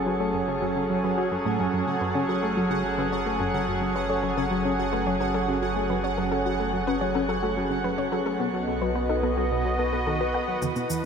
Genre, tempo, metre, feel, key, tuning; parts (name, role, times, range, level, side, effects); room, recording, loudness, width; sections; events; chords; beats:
ambient, sequencer-driven space music; 108 BPM; 4/4; straight; F# minor; A4 = 439 Hz
sweeping resonant pad; sustained chords; 0.0-11.1 s; F#3 to F#5; -26 LUFS; right 1 dB; chorus
round analog bass; bass; 0.0-10.6 s; F#1 to B1; -35 LUFS; equal; tube saturation
pulsing gated texture; texture; 0.0-11.1 s; F#5 to B5; -34 LUFS; right 4 dB; chorus, built-in reverb
soft round pluck; arpeggios; 0.1-10.7 s; E4 to F#5; -34 LUFS; left 4 dB; chorus, auto-pan, vintage 12-bit sampler grit, ping-pong delay
tight sequenced synth; riff; 0.1-11.0 s; E2 to D#4; -29 LUFS; equal; chorus, phaser, ping-pong delay
electronic toms and shaker; percussion; 10.6-11.0 s; -33 LUFS; right 2 dB; overdrive
wet shimmer reverb, RT60 6.7 s; -23 LUFS; side -6 dB against mid
0.0-10.6 A section
fade-in on synth arpeggio sound 0.0-10.6; fade-in on analog synth bass 0.0-10.6
0.0 F#madd9; 8.4 B7
0.07 0.62 1.18 | 1.73 2.29 2.84 3.40 | 3.96 4.51 5.07 5.62 | 6.18 6.73 7.29 7.84 | 8.40 8.96 9.51 10.07 | 10.62